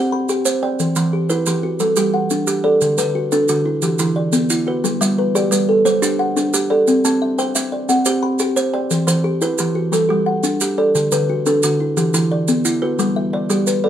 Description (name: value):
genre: southern african traditional, mbira-style interlocking cycle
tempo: 118 BPM (dotted quarters)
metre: 12/8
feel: straight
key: G major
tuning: A4 = 441 Hz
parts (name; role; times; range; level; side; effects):
- kalimba; arpeggios; 0.0-13.9 s; D3 to B5; -18 LUFS; left 2 dB; none
- kalimba; arpeggios; 0.0-13.9 s; D3 to G5; -19 LUFS; right 3 dB; none
- maracas; percussion; 0.3-13.8 s; none; -24 LUFS; right 4 dB; none
room: moderate studio reverb, RT60 0.6 s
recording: none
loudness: -15 LUFS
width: side -10 dB against mid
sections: 0.0-13.0 A section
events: none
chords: 0.0 C5; 0.8 Em; 1.8 G5; 2.8 D; 3.8 Em; 4.8 G; 6.9 C; 8.9 Em; 9.9 G5; 10.9 D; 12.0 Em; 13.0 G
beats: 0.28 | 0.79 1.30 1.80 2.31 | 2.81 3.32 3.83 4.33 | 4.84 5.35 5.86 6.36 | 6.87 7.38 7.89 8.40 | 8.91 9.41 9.93 10.43 | 10.94 11.45 11.96 12.47 | 12.99 13.50